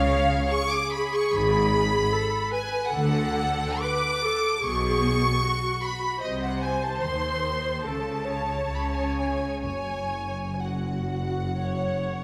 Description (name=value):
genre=classical, slow romantic movement for string orchestra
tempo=60-78 BPM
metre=4/4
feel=rubato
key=unclear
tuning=A4 = 441 Hz
part: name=rich chamber violin section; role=melody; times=0.0-12.2 s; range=Eb5 to D6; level=-34 LUFS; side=equal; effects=none
part: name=rich chamber violin section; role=second line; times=0.0-12.2 s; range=Eb5 to D6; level=-33 LUFS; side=equal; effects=none
part: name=rich studio viola section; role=accompaniment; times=0.0-12.2 s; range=F#4 to C#5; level=-31 LUFS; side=equal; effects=none
part: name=rich studio cello section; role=bass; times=0.0-12.2 s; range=F#2 to Eb3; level=-34 LUFS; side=equal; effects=none
part: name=rich studio double bass section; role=bass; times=0.0-12.2 s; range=F#1 to Eb2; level=-33 LUFS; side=equal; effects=none
room=moderate concert hall reverb, RT60 2.2 s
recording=none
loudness=-26 LUFS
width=mono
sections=0.0-12.2 A section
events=none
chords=0.0 C#7; 2.9 D; 4.6 B5; 6.2 Cdim7; 7.8 C#5; 9.6 F#5